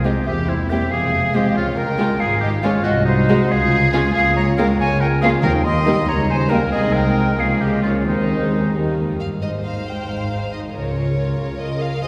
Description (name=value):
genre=quick classical-period movement for symphony orchestra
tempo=93 BPM (dotted quarters)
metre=6/8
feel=straight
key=Ab major from 4.1 s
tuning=A4 = 439 Hz
part: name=clear oboe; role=second line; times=0.0-8.7 s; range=Eb4 to Eb5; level=-28 LUFS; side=equal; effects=none
part: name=dark chamber violin section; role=second line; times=0.0-12.1 s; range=Bb3 to C5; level=-30 LUFS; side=equal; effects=none
part: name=silver concert flute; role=second line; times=0.0-8.7 s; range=C5 to C6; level=-25 LUFS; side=equal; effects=none
part: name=warm chamber viola section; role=accompaniment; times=0.0-12.1 s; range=Eb3 to C5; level=-26 LUFS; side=equal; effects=none
part: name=mellow French horn section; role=sustained chords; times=0.0-9.2 s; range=G3 to Gb4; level=-28 LUFS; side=equal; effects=none
part: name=clear chamber double bass section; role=bass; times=0.0-12.1 s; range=E1 to Eb2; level=-26 LUFS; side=equal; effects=none
part: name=dark chamber cello section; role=bass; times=0.0-12.1 s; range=C2 to Db3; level=-26 LUFS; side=equal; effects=none
part: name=warm chamber violin section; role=melody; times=0.1-12.1 s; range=Eb4 to G5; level=-32 LUFS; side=equal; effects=none
part: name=timpani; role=percussion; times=5.4-6.0, 8.1-8.7 s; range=Eb3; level=-29 LUFS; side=equal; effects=none
room=wet concert hall reverb, RT60 2.2 s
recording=heard from further back in the room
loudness=-19 LUFS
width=mono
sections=0.0-9.4 A section; 9.4-12.1 B section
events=none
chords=0.3 C7/E; 0.9 Fm; 1.6 Db; 2.8 Ab7/C; 3.5 Db; 4.1 Bbm7/Db; 5.4 Eb; 6.1 Eb7/Db; 6.7 Ab/C; 7.4 Bbm7/Db; 8.1 Ab/Eb; 8.7 Eb; 9.4 Ab; 10.7 Bbm/Db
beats=| 0.27 0.92 | 1.56 2.20 | 2.85 3.50 | 4.14 4.79 | 5.42 6.07 | 6.72 7.38 | 8.07 8.75 | 9.43 10.09 | 10.74 11.39 | 12.04